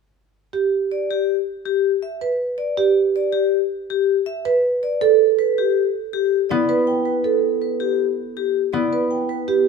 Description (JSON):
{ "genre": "classical, minimalist pattern music", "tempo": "161 BPM", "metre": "6/4", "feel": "straight", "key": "G major", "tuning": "A4 = 440 Hz", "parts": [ { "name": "marimba with soft mallets", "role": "arpeggios", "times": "0.5-9.7 s", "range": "E4 to B4", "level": "-20 LUFS", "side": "right 6 dB", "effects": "none" }, { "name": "vibraphone with medium hard mallets", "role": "melody", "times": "0.9-9.5 s", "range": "G4 to G5", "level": "-21 LUFS", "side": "left 8 dB", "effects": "none" }, { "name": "concert harp", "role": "accompaniment", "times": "6.5-9.5 s", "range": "B3", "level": "-26 LUFS", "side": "left 3 dB", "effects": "none" } ], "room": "moderate large studio reverb, RT60 1.4 s", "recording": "minimal, uncompressed stereo recording, faint mains hum", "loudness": "-18 LUFS", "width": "side -5 dB against mid", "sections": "0.5-9.7 A section", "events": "none", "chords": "0.5 G; 5.0 Em (rootless)", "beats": "| 0.54 0.92 1.29 1.66 2.04 2.41 | 2.78 3.15 3.52 3.90 4.27 4.64 | 5.02 5.39 5.76 6.13 6.51 6.88 | 7.25 7.62 8.00 8.37 8.74 9.12 | 9.49" }